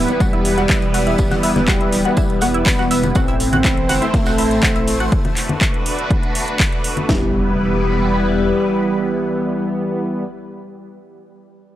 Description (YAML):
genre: melodic techno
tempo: 122 BPM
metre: 4/4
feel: straight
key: E minor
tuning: A4 = 440 Hz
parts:
  - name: expressive portamento lead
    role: melody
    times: 0.0-10.2 s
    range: G3 to C4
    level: -21 LUFS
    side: left 1 dB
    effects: analog chorus, sidechain pumping, tape echo
  - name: lush unison pad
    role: sustained chords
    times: 0.0-10.2 s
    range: G3 to C5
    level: -23 LUFS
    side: equal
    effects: chorus, phaser, sidechain pumping
  - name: tight sequenced synth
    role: arpeggios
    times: 0.0-7.3 s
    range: E4 to F#5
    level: -24 LUFS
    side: equal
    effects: chorus, phaser, sidechain pumping, analog delay
  - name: analog synth brass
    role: stabs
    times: 0.0-10.2 s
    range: E3 to C4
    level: -25 LUFS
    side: right 2 dB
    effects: chorus, sidechain pumping, analog delay
  - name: dark detuned saw bass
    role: bass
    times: 0.0-8.5 s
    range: D1 to A1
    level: -24 LUFS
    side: equal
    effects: sidechain pumping
  - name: gated 80s drum kit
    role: drums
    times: 0.1-5.0 s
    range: hi-hat, snare drum, tambourine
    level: -34 LUFS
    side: equal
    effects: sidechain pumping on hats, high-pass filter on hats, high-pass filter on snare, sidechain pumping on perc, high-pass filter on perc, high-pass filter on room
  - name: house drum kit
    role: drums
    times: 0.1-7.1 s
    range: congas, handclaps, hi-hat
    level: -21 LUFS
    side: left 1 dB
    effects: overdrive, sidechain pumping on hats, sidechain pumping on perc
  - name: house drum kit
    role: drums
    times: 0.2-7.2 s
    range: kick drum, snare drum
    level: -18 LUFS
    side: equal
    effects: overdrive
  - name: impact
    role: sound effects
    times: 7.2-10.3 s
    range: none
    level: -30 LUFS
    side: equal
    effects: none
room: digital ambience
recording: none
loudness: -15 LUFS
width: side -13 dB against mid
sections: 0.0-7.1 A section; 7.1-11.0 B section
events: drop 0.0-7.1; band accent 6.6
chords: 0.0 Em; 3.2 Am; 5.1 Bm7; 7.1 Em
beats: 0.20 0.70 | 1.19 1.68 2.17 2.66 | 3.15 3.65 4.14 4.63 | 5.12 5.61 6.11 6.60 | 7.09 7.58 8.07 8.56 | 9.06 9.55 10.04